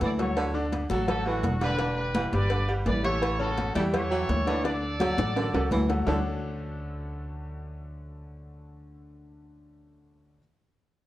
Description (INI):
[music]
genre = latin, salsa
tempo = 168 BPM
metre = 4/4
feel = straight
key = D major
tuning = A4 = 440 Hz
[part]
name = bright trumpet section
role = melody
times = 0.0-5.7 s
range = D4 to D5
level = -32 LUFS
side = equal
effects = none
[part]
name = breathy baritone saxophone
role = second line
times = 0.0-6.2 s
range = D3 to G3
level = -32 LUFS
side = right 2 dB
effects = none
[part]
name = bright grand piano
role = accompaniment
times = 0.0-10.4 s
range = C#3 to G5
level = -33 LUFS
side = left 2 dB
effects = none
[part]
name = upright bass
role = bass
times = 0.0-10.4 s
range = E1 to E2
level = -30 LUFS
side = equal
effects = none
[part]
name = congas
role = percussion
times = 0.0-6.2 s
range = none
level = -35 LUFS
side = left 1 dB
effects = none
[part]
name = cowbell and bongos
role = percussion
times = 0.0-6.2 s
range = none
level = -36 LUFS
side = left 3 dB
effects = none
[part]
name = timbales and agogo bells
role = percussion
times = 0.2-6.2 s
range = none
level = -34 LUFS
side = right 3 dB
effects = none
[sound]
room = moderate studio reverb, RT60 0.9 s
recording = worn, warbling old tape, cassette tape, warbly pitch drift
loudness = -25 LUFS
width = side -14 dB against mid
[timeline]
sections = 0.0-6.1 A section; 6.1-8.9 B section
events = drum fill 0.0-0.4, 4.7-6.1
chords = 0.0 D; 1.8 Em7; 3.2 A7; 4.7 D; 6.1 Dmaj7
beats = 0.02 | 0.37 0.73 1.09 1.44 | 1.80 2.16 2.51 2.87 | 3.23 3.58 3.94 4.30 | 4.65 5.01 5.37 5.72 | 6.08 6.44 6.79 7.15 | 7.51 7.86 8.22 8.58